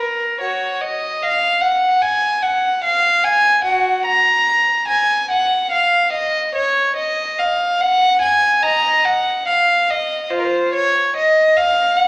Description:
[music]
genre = classical, baroque-style suite movement for unaccompanied violin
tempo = 72 BPM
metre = 4/4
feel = rubato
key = unclear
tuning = A4 = 440 Hz
[part]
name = warm violin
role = solo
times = 0.0-12.1 s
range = F4 to Bb5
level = -17 LUFS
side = equal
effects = none
[sound]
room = wet recital hall reverb, RT60 1.3 s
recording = vinyl crackle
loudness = -17 LUFS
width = mono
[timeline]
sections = 0.0-12.1 A section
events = none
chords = none

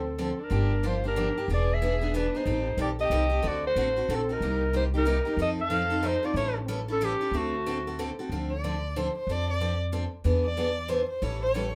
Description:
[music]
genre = acoustic string swing (jazz manouche)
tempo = 185 BPM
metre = 3/4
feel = swing 61% on 8ths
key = G minor, D minor from 8.3 s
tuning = A4 = 443 Hz
[part]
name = clear clarinet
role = melody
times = 0.0-8.0 s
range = F#4 to F5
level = -31 LUFS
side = equal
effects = none
[part]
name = warm violin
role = second line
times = 0.0-11.7 s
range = A3 to D5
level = -37 LUFS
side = equal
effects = none
[part]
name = upright bass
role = bass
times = 0.0-11.8 s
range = E1 to F2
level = -32 LUFS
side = equal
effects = none
[part]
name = picked steel-string acoustic guitar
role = accompaniment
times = 0.2-11.7 s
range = C3 to A4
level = -34 LUFS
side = equal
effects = none
[sound]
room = moderate club reverb, RT60 0.7 s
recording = none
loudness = -28 LUFS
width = mono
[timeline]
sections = 0.5-8.3 A section; 8.3-11.8 B section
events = violin solo 8.3-11.8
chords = 0.0 Dm7; 0.5 Gm7; 1.5 E7; 2.5 Am7b5; 3.4 D7; 4.4 Cm7; 5.4 F7; 6.4 A7; 7.3 D7; 8.3 Dm7; 9.3 F6; 10.2 E7; 11.2 A7

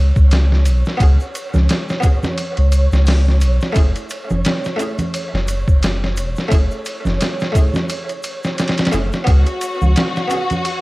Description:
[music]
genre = trip hop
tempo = 87 BPM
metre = 4/4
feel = swing 57% on 16ths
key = F# minor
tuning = A4 = 436 Hz
[part]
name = buff-stop harpsichord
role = accompaniment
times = 0.0-10.8 s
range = A3 to G#4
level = -25 LUFS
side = equal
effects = tremolo, cassette tape, tape echo
[part]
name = soft dub sub bass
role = bass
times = 0.0-9.9 s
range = E1 to C#2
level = -14 LUFS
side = equal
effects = none
[part]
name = flickering grainy texture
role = texture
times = 0.0-10.8 s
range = C#5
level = -29 LUFS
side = right 2 dB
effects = built-in reverb, cassette tape
[part]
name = trip hop sampler-style drum kit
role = drums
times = 0.2-10.8 s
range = hi-hat, kick drum, ride cymbal, snare drum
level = -18 LUFS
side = equal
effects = cassette tape
[part]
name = egg shaker and congas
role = percussion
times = 0.2-10.8 s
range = none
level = -25 LUFS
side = right 1 dB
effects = none
[part]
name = rich symphonic string section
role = sustained chords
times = 9.3-10.8 s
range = F#4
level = -22 LUFS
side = left 1 dB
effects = cassette tape
[sound]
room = small room ambience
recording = home recording on cassette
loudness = -14 LUFS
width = side -21 dB against mid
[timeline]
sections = 0.0-10.8 A section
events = none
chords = 0.0 C#7sus4; 3.8 F#m7; 9.3 C#7sus4

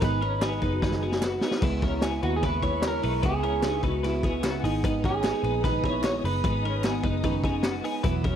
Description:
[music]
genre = jangly indie pop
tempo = 150 BPM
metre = 4/4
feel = straight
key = G# minor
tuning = A4 = 440 Hz
[part]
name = electric guitar through a small old amp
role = melody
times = 0.0-7.2 s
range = F#4 to C#5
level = -30 LUFS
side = right 3 dB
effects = slapback echo
[part]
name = picked plugged-in steel-string acoustic guitar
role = accompaniment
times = 0.0-8.4 s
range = G#2 to E4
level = -31 LUFS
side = right 7 dB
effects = none
[part]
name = twelve-string electric guitar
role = arpeggios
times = 0.0-8.4 s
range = B3 to C#5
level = -33 LUFS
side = left 7 dB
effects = tremolo, slapback echo
[part]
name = vintage muted picked electric bass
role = bass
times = 0.0-8.4 s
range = E1 to D#2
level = -30 LUFS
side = left 1 dB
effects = none
[part]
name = raw garage drum kit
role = drums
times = 0.0-8.3 s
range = crash cymbal, hi-hat, kick drum, ride cymbal, snare drum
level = -29 LUFS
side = left 1 dB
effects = none
[part]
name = vibraphone with hard mallets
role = second line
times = 0.4-8.4 s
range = B3 to G#4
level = -34 LUFS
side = moving between left 12 dB and left 6 dB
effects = auto-pan
[part]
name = group handclap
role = percussion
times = 0.4-7.7 s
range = none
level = -40 LUFS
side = right 6 dB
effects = none
[part]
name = clear studio string section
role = sustained chords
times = 1.6-8.4 s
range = B3 to E6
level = -41 LUFS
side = left 1 dB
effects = none
[sound]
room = little or no reverb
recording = dry, close 1970s-style studio recording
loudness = -24 LUFS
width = side -9 dB against mid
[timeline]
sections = 0.0-8.4 A section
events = drum fill 0.8-1.6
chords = 0.0 G#m; 1.6 C#m7; 4.6 G#m

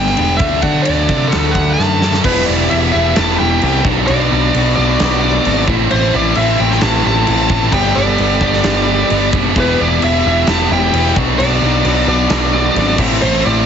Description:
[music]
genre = quiet-loud alternative rock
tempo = 131 BPM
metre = 4/4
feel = straight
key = E minor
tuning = A4 = 445 Hz
[part]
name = bluesy overdriven lead guitar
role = melody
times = 0.0-13.7 s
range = A4 to A5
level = -18 LUFS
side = equal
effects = distortion
[part]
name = picked steel-string acoustic guitar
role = arpeggios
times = 0.0-2.2 s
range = D3 to B4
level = -24 LUFS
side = right 6 dB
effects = none
[part]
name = fuzz guitar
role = riff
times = 0.0-13.7 s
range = G2 to G4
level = -20 LUFS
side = left 12 dB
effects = distortion
[part]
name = heavy high-gain guitar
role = riff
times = 0.0-13.7 s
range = G2 to G4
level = -19 LUFS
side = right 15 dB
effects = distortion
[part]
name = growling picked electric bass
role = bass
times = 0.0-13.6 s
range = E1 to D3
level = -17 LUFS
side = equal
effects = overdrive
[part]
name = huge arena drum kit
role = drums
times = 0.1-13.3 s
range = crash cymbal, kick drum, ride cymbal, snare drum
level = -19 LUFS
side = equal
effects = none
[part]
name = dark studio string section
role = sustained chords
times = 2.2-13.7 s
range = F#4 to C6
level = -30 LUFS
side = left 1 dB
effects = none
[part]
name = raw garage guitar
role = riff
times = 2.2-13.7 s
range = A2 to G4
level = -21 LUFS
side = right 1 dB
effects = overdrive, spring reverb
[sound]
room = little or no reverb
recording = heavily compressed radio sound, multiband compression, nothing above 7.8 kHz, faint mains hum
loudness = -11 LUFS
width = side -8 dB against mid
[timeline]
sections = 0.0-2.2 A section; 2.2-13.7 B section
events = lead electric guitar solo 0.0-2.2; drum fill 1.8-2.2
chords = 0.4 D; 2.2 Em; 3.8 Bm; 5.7 Am; 7.7 Gadd9; 9.6 Em; 11.2 Bm; 13.0 Am

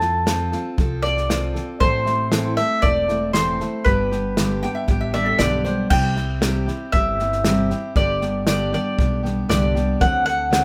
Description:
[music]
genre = honky-tonk and classic country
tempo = 117 BPM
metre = 4/4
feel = straight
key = C major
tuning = A4 = 440 Hz
[part]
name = mandolin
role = melody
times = 0.0-10.6 s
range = B4 to A5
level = -24 LUFS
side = equal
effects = none
[part]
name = picked steel-string acoustic guitar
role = accompaniment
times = 0.0-10.6 s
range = G2 to A4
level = -27 LUFS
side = equal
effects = none
[part]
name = upright bass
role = bass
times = 0.0-10.6 s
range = E1 to F2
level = -28 LUFS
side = equal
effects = none
[part]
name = natural country drum kit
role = drums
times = 0.0-10.6 s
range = crash cymbal, hi-hat, kick drum, snare drum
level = -25 LUFS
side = equal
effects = none
[part]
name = lap resonator guitar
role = second line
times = 4.6-5.9 s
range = A4 to G5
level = -29 LUFS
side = equal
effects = none
[sound]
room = light reverb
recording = none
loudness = -20 LUFS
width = mono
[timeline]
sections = 0.0-5.9 A section; 5.9-10.6 A section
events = none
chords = 0.0 F; 1.8 Am; 3.9 G; 5.9 C; 8.0 G; 10.0 D7

